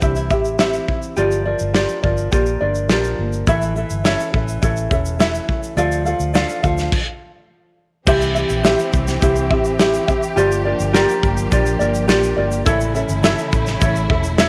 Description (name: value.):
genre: acoustic pop.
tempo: 104 BPM.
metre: 4/4.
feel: straight.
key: unclear.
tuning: A4 = 441 Hz.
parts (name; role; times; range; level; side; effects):
ukulele; accompaniment; 0.0-14.5 s; E4 to F5; -21 LUFS; equal; none.
nylon-string guitar; arpeggios; 0.0-14.5 s; E3 to A4; -29 LUFS; equal; none.
vintage muted fingered electric bass; bass; 0.0-14.5 s; E1 to D2; -25 LUFS; equal; none.
loose indie drum kit; drums; 0.0-14.5 s; crash cymbal, kick drum, shaker, snare drum; -22 LUFS; equal; none.
egg shaker; percussion; 3.5-14.5 s; none; -42 LUFS; equal; none.
warm studio string section; sustained chords; 8.1-14.5 s; C#3 to G4; -28 LUFS; equal; none.
room: moderate echo chamber reverb, RT60 1.7 s, small room ambience.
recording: none.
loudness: -18 LUFS.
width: mono.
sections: 0.0-8.1 A section; 8.1-14.5 B section.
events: stop 6.9-8.1.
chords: 0.0 C; 1.2 Gm7; 3.5 A; 5.8 Dm; 8.1 C; 10.4 Gm7; 12.7 A.